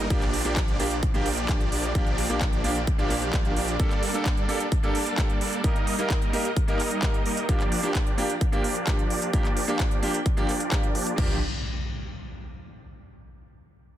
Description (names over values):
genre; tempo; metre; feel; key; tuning
EDM, festival progressive house; 130 BPM; 4/4; straight; Bb major; A4 = 442 Hz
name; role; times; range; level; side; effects
supersaw chords; riff; 0.0-11.4 s; F3 to Eb5; -29 LUFS; right 1 dB; sidechain pumping, low-pass filter, dub echo
wide detuned saw bass; bass; 0.0-3.8, 11.2-11.4 s; Bb1; -31 LUFS; equal; chorus, sidechain pumping
bright concert grand piano; accompaniment; 0.1-11.4 s; Bb3 to Bb4; -31 LUFS; equal; sidechain pumping, dub echo
big-room dance drum kit; drums; 0.1-11.3 s; crash cymbal, handclaps, hi-hat; -32 LUFS; right 1 dB; none
electronic kick drum; drums; 0.1-11.3 s; none; -25 LUFS; equal; none
impact; sound effects; 11.2-13.0 s; none; -34 LUFS; equal; none
room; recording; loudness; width
light reverb; dense, heavily limited modern master; -23 LUFS; side -12 dB against mid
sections
0.0-11.2 A section; 11.2-13.0 B section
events
filter sweep on supersaw synth 0.0-11.2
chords
0.1 Bb6; 3.8 Gmadd9; 5.6 Eb/G; 7.5 Bb6